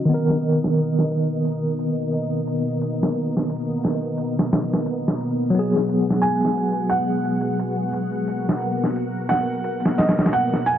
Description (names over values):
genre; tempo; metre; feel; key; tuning
trip hop; 88 BPM; 4/4; swing 59% on 16ths; unclear; A4 = 440 Hz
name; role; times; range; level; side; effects
tine electric piano; accompaniment; 0.0-10.8 s; D#3 to A#4; -23 LUFS; equal; medium stereo tremolo, vintage 12-bit sampler grit, tape echo
string machine, cellos; sustained chords; 0.0-10.8 s; B3 to Gb5; -25 LUFS; equal; phaser, ensemble chorus
dusty soul sampler-style drum kit; drums; 0.1-10.8 s; hi-hat, snare drum; -22 LUFS; equal; low-pass filter on hats, vintage 12-bit sampler grit, low-pass filter on snare
felt-muted upright piano; melody; 6.2-10.8 s; Eb5 to Ab5; -24 LUFS; right 3 dB; tape echo
room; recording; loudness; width
light reverb, digital ambience; dark, warm production, vinyl crackle, low-pass filter; -19 LUFS; side -10 dB against mid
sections
0.0-10.8 A section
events
filter sweep on string machine 0.0-10.8; filter sweep 0.0-10.8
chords
0.1 Bmaj7; 5.5 Abm7